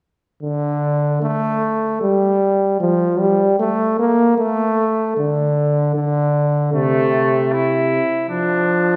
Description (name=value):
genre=classical, imitative canzona for brass ensemble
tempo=76 BPM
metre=4/4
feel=straight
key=unclear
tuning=A4 = 441 Hz
part: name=clear trombone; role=accompaniment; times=0.4-9.0 s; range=C3 to Bb3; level=-18 LUFS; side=equal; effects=none
part: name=warm trumpet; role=second line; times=6.7-9.0 s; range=A3 to E4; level=-21 LUFS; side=equal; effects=none
room=wet recital hall reverb, RT60 1.6 s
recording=heard from further back in the room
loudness=-18 LUFS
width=mono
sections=0.4-9.0 A section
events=none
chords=0.4 N.C.; 6.7 Am/C; 8.3 Dm/F